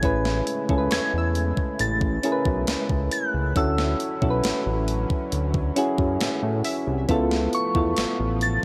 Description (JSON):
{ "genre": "contemporary R&B", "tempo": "68 BPM", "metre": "4/4", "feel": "straight", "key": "A major", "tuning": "A4 = 442 Hz", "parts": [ { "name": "soft synth bell", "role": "melody", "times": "0.0-8.6 s", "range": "C#6 to A6", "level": "-32 LUFS", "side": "equal", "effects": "chorus" }, { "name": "soft electric-piano-like synth keys", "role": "accompaniment", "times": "0.0-8.6 s", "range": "B3 to B4", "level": "-28 LUFS", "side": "equal", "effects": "chorus" }, { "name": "chorused pulse-width pad", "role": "sustained chords", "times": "0.0-8.6 s", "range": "C#3 to E4", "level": "-38 LUFS", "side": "equal", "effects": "none" }, { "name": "fat analog bass", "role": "bass", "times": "0.0-8.6 s", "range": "A1 to A2", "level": "-28 LUFS", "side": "equal", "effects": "tube saturation" }, { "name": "gated 80s digital drum machine", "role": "drums", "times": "0.0-8.6 s", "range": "hi-hat, kick drum, snare drum", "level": "-29 LUFS", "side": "equal", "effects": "gated reverb, gated reverb snare" }, { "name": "glassy wavetable pluck", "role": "texture", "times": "0.0-7.5 s", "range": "E5 to E6", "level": "-40 LUFS", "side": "equal", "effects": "chorus, tape echo" } ], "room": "digital ambience", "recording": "dry, gritty hardware recording", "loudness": "-24 LUFS", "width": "mono", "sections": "0.0-8.6 A section", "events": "none", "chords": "0.0 Amaj7; 3.6 Dmaj9; 7.1 C#7alt", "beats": "| 0.03 0.91 1.79 2.67 | 3.56 4.44 5.32 6.20 | 7.09 7.97" }